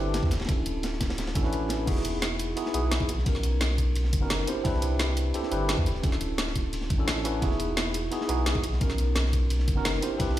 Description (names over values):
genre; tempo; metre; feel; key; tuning
liquid drum and bass; 173 BPM; 4/4; straight; unclear; A4 = 440 Hz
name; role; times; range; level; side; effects
tine electric piano; accompaniment; 0.0-10.4 s; B3 to C5; -30 LUFS; equal; medium stereo tremolo, ping-pong delay
warm sub bass; bass; 0.0-10.4 s; D1 to E2; -29 LUFS; equal; none
crunchy breakbeat drum kit; drums; 0.1-10.4 s; ride cymbal, snare drum; -37 LUFS; equal; high-pass filter on cymbals, small room ambience, high-pass filter on snare, high-pass filter on room
drum and bass drum kit; drums; 0.1-10.4 s; crash cymbal, hi-hat, snare drum; -32 LUFS; equal; overdrive, small room ambience
electronic kick drum; drums; 0.2-10.3 s; none; -28 LUFS; equal; overdrive, small room ambience
room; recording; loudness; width
light reverb, digital ambience; played on a big sound system in a bare room, large studio reverb; -24 LUFS; side -13 dB against mid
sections
0.0-10.4 A section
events
none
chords
0.3 Dmaj9; 1.9 Emaj9; 3.1 Bmaj9; 4.5 Cmaj9; 5.9 Dmaj9; 7.4 Emaj9; 8.6 Bmaj9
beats
0.14 | 0.49 0.83 1.18 1.53 | 1.88 2.22 2.57 2.92 | 3.26 3.61 3.96 4.30 | 4.65 5.00 5.34 5.69 | 6.04 6.38 6.73 7.08 | 7.42 7.77 8.12 8.46 | 8.81 9.16 9.51 9.85 | 10.20